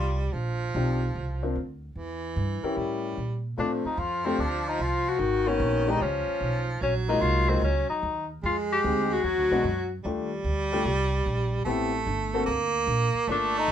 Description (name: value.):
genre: jazz, small-group swing and bop.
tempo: 148 BPM.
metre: 4/4.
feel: swing 66% on 8ths.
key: unclear.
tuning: A4 = 441 Hz.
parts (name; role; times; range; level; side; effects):
warm tenor saxophone; melody; 0.0-0.2, 3.6-9.9, 13.3-13.7 s; C4 to G4; -27 LUFS; left 4 dB; none.
edgy baritone saxophone; second line; 0.0-13.7 s; Eb3 to Bb3; -30 LUFS; right 3 dB; none.
upright bass; bass; 0.0-13.7 s; G1 to Bb2; -30 LUFS; right 1 dB; none.
warm concert grand piano; accompaniment; 0.8-13.5 s; Ab3 to Bb4; -29 LUFS; left 4 dB; none.
room: moderate studio ambience, RT60 0.5 s.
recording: band playing live in one room.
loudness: -24 LUFS.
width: side -9 dB against mid.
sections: 0.0-3.6 A section; 3.6-13.7 B section.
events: none.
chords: 0.3 Bb69; 2.0 Edim; 2.8 A7b9; 3.6 Dm7; 5.2 Abm11; 6.0 Db7; 6.8 Gbmaj13; 8.4 Fm9; 9.2 E9; 10.1 Ebmaj9#11; 11.7 Am7; 12.5 Bb.